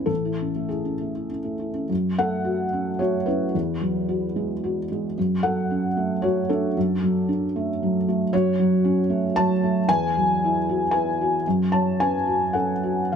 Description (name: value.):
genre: neoclassical minimalist piano.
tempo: 97-117 BPM.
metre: 3/4.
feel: rubato.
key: F# minor.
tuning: A4 = 441 Hz.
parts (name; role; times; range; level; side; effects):
felt-muted upright piano; solo; 0.0-13.2 s; A1 to A5; -21 LUFS; equal; none.
room: little or no reverb.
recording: none.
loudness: -21 LUFS.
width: side -7 dB against mid.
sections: 0.0-1.9 A section; 1.9-13.2 B section.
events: none.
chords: 0.1 Amaj7; 1.9 F#m; 3.5 Eadd9; 5.2 F#m; 6.8 D/F#; 8.3 F#m; 9.9 Eadd9; 11.5 F#m.